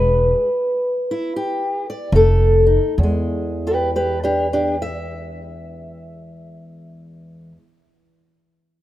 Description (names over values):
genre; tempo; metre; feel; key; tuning
acoustic country blues, solo or duo; 69-84 BPM; 4/4; swing 62% on 8ths; E mixolydian; A4 = 441 Hz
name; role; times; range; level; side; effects
fingerpicked old ladder-braced acoustic guitar; melody; 0.0-8.0 s; E2 to E5; -18 LUFS; equal; none
upright bass; bass; 0.0-7.5 s; E1 to E2; -21 LUFS; equal; none
room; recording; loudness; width
light reverb, small room ambience; rough home demo mix; -16 LUFS; side -14 dB against mid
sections
0.0-3.0 A section; 3.0-6.4 B section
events
slowing down 0.0-3.0; steel-string acoustic guitar solo 0.0-3.0; stop 0.0-2.1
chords
0.0 E; 2.1 F7; 3.0 E